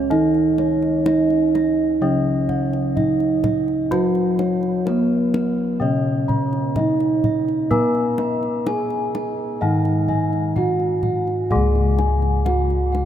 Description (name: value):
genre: Javanese gamelan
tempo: 63 BPM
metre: 4/4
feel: straight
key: C# slendro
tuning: A4 = 437 Hz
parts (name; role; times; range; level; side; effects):
- gamelan-type bronze metallophone; melody; 0.0-13.1 s; B3-40c to B4-40c; -20 LUFS; right 3 dB; none
- gamelan-type bronze metallophone; accompaniment; 0.0-13.1 s; C#3 to B3-40c; -25 LUFS; left 3 dB; none
- gamelan-type bronze metallophone; arpeggios; 0.0-13.1 s; B4-40c to B5-40c; -30 LUFS; right 2 dB; none
- gamelan-type bossed gongs; bass; 0.0-13.1 s; C#2 to B4-40c; -25 LUFS; left 1 dB; none
- gamelan-type bossed gongs; arpeggios; 0.1-13.0 s; B4-40c to B5-40c; -29 LUFS; left 6 dB; none
- kendang; percussion; 0.1-13.1 s; none; -29 LUFS; left 1 dB; none
room: wet cathedral reverb, RT60 7.2 s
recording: in a vast, echoing space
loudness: -17 LUFS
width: side -10 dB against mid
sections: 0.0-13.1 A section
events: none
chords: none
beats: | 0.12 1.07 2.02 2.97 | 3.92 4.87 5.82 6.77 | 7.72 8.67 9.62 10.57 | 11.52 12.47